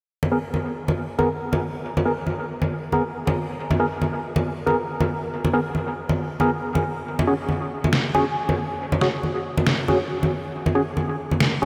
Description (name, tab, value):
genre	deep dubstep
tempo	138 BPM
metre	4/4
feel	swing 59% on 16ths, half-time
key	G# minor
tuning	A4 = 441 Hz
part	congas	percussion	0.2-11.7 s	none	-27 LUFS	equal	dub echo
part	percussive organ stab	stabs	0.3-11.7 s	B3 to A#4	-27 LUFS	equal	analog chorus, cassette tape, dub echo
part	electronic snare drum	drums	7.9-11.5 s	none	-27 LUFS	equal	none
room	wet huge ambient reverb, RT60 4.0 s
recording	dreamy mix soaked in reverb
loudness	-24 LUFS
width	mono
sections	0.1-11.7 A section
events	none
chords	0.1 G#madd9; 7.1 C#sus4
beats	| 0.10 0.54 0.97 1.41 | 1.84 2.27 2.71 3.14 | 3.58 4.01 4.45 4.88 | 5.32 5.75 6.19 6.62 | 7.06 7.49 7.93 8.36 | 8.80 9.23 9.67 10.10 | 10.54 10.97 11.40